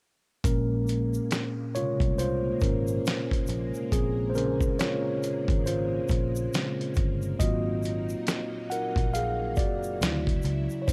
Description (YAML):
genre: lo-fi hip hop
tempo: 69 BPM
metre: 4/4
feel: swing 60% on 16ths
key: Bb minor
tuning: A4 = 440 Hz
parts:
  - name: mellow tine electric piano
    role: accompaniment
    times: 0.4-10.9 s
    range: Bb2 to Gb5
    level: -31 LUFS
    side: equal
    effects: none
  - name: string machine, full ensemble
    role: sustained chords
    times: 0.4-10.9 s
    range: Bb2 to E4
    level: -41 LUFS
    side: equal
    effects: ensemble chorus
  - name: vintage muted picked electric bass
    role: bass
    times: 0.4-10.9 s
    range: Gb1 to D2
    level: -33 LUFS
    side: equal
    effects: none
  - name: dusty soul sampler-style drum kit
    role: drums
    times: 0.4-10.9 s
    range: hi-hat, kick drum, snare drum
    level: -30 LUFS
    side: equal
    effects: none
  - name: egg shaker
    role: percussion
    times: 0.5-10.9 s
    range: none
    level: -49 LUFS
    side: equal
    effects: none
room: light reverb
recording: none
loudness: -28 LUFS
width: mono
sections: 0.4-10.9 A section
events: tine electric piano solo 0.4-10.9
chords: 0.4 Bbm9; 7.4 Ab13; 10.0 Dmaj9